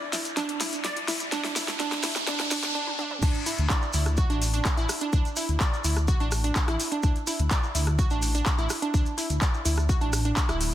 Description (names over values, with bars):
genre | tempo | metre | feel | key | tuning
progressive house | 126 BPM | 4/4 | straight | D major | A4 = 440 Hz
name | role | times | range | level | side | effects
riser | sound effects | 0.0-2.7 s | none | -33 LUFS | right 1 dB | none
glassy wavetable pluck | arpeggios | 0.1-10.6 s | D4 to D5 | -30 LUFS | right 2 dB | chorus, cassette tape, sidechain pumping, tape echo
deep house drum kit | drums | 0.1-10.7 s | crash cymbal, handclaps, hi-hat, rim click, snare drum, toms | -31 LUFS | left 1 dB | overdrive, high-pass filter on snare, sidechain pumping on hats, high-pass filter on hats, sidechain pumping on toms, high-pass filter on toms, sidechain pumping on cymbals, high-pass filter on cymbals
maracas | percussion | 0.1-10.7 s | none | -36 LUFS | right 2 dB | none
dark detuned saw bass | bass | 3.2-10.7 s | D1 to D2 | -26 LUFS | equal | sidechain pumping
electronic kick drum | drums | 3.2-10.5 s | none | -25 LUFS | equal | none
room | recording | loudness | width
light reverb | dense, heavily limited modern master, high-pass filter | -23 LUFS | side -12 dB against mid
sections
0.0-3.2 A section; 3.2-10.7 B section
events
build-up 0.0-3.2; drum fill 0.0-2.7, 2.9-3.2; riser 0.0-2.7; break 2.7-3.2; drop 3.2-10.7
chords
0.0 N.C.; 3.2 D5